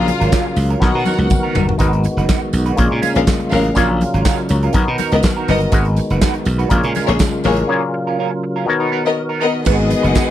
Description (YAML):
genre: disco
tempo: 122 BPM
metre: 4/4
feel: straight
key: G# dorian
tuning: A4 = 441 Hz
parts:
  - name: warm studio violin section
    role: second line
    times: 0.0-10.3 s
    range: A#3 to F#5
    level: -19 LUFS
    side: left 4 dB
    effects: none
  - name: auto-wah clav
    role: accompaniment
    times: 0.0-9.6 s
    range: A#2 to F#5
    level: -24 LUFS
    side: left 4 dB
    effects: none
  - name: percussive tonewheel organ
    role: sustained chords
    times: 0.0-10.3 s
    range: C#3 to A#4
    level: -21 LUFS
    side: left 1 dB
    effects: chorus vibrato, slow rotary speaker
  - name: glassy slap bass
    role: bass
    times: 0.0-10.1 s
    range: F#1 to B2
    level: -17 LUFS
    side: equal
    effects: none
  - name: electric guitar at the edge of break-up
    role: accompaniment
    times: 0.1-10.3 s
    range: B3 to B4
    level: -23 LUFS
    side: right 8 dB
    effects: wah, wide subtle chorus
  - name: modern studio drum kit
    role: drums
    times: 0.1-10.3 s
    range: crash cymbal, handclaps, hi-hat, kick drum, snare drum, toms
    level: -19 LUFS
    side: right 1 dB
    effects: none
  - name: congas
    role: percussion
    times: 0.1-10.3 s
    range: none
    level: -26 LUFS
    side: left 5 dB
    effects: none
  - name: tambourine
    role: percussion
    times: 0.3-10.3 s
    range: none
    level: -34 LUFS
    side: right 24 dB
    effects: none
room: little or no reverb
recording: none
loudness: -14 LUFS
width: side -12 dB against mid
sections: 0.0-1.8 A section; 1.8-9.7 B section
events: drum fill 0.8-1.8; break 7.7-9.7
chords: 0.0 F#maj7; 0.8 Bmaj7; 1.8 G#m7; 2.8 A#m7; 3.8 F#maj7; 4.7 Bmaj7; 5.7 G#m7; 6.7 A#m7; 7.7 F#maj7/A#; 8.7 Bmaj7; 9.7 G#m7